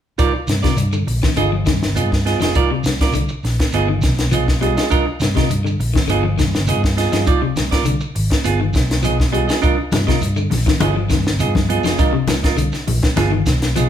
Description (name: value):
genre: afrobeat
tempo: 102 BPM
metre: 4/4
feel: straight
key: C minor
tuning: A4 = 443 Hz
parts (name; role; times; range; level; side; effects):
- clean electric guitar; stabs; 0.2-13.9 s; B3 to Eb5; -21 LUFS; right 5 dB; none
- fingered electric bass; bass; 0.2-13.9 s; F1 to G2; -20 LUFS; equal; none
- compact cocktail drum kit; drums; 0.2-13.9 s; hi-hat, kick drum, snare drum; -19 LUFS; equal; none
- shekere; percussion; 0.2-13.9 s; none; -27 LUFS; equal; none
- clean electric guitar; arpeggios; 0.6-13.9 s; C3 to G3; -24 LUFS; left 6 dB; none
- congas; percussion; 9.9-13.3 s; none; -23 LUFS; left 4 dB; none
room: moderate large studio reverb, RT60 0.9 s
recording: band playing live in one room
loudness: -15 LUFS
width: side -10 dB against mid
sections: 0.2-13.9 A section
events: none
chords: 0.2 Cm11; 1.4 G7b9b13; 2.6 Cm11; 3.7 G7b9b13; 4.9 Cm11; 6.1 G7b9b13; 7.3 Cm11; 8.5 G7b9b13; 9.6 Cm11; 10.8 G7b9b13; 12.0 Cm11; 13.2 G7b9b13